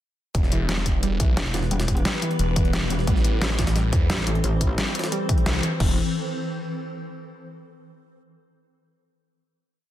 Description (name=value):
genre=dark technical drum and bass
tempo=176 BPM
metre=4/4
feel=straight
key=E minor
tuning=A4 = 439 Hz
part: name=swarming drone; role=sustained chords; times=1.0-6.0 s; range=E3 to C5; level=-30 LUFS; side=left 3 dB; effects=built-in reverb, sidechain pumping
part: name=phased detuned saw bass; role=bass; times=0.3-6.0 s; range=E1 to E2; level=-24 LUFS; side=equal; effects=phaser, tube saturation
part: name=dubstep drum kit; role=drums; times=0.3-5.9 s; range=crash cymbal, hi-hat, snare drum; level=-28 LUFS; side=left 1 dB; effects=none
part: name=electronic kick drum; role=drums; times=0.3-5.9 s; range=none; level=-23 LUFS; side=equal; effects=none
part: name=jungle sampler-style drum kit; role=drums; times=0.3-5.7 s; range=hi-hat, snare drum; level=-34 LUFS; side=equal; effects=high-pass filter on hats, high-pass filter on snare
part: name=warbly dusty pluck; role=arpeggios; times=0.5-6.0 s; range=E3 to G3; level=-30 LUFS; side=right 3 dB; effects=chorus, sidechain pumping, tape echo
part: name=metallic wobble bass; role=bass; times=1.4-5.6 s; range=E1 to C2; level=-25 LUFS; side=equal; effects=chorus
room=digital ambience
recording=dense, heavily limited modern master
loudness=-20 LUFS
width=side -13 dB against mid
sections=0.3-5.8 drop; 5.8-7.2 final chord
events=drop 0.3-5.8; band accent 5.5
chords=0.3 Em; 3.1 Am; 5.8 E5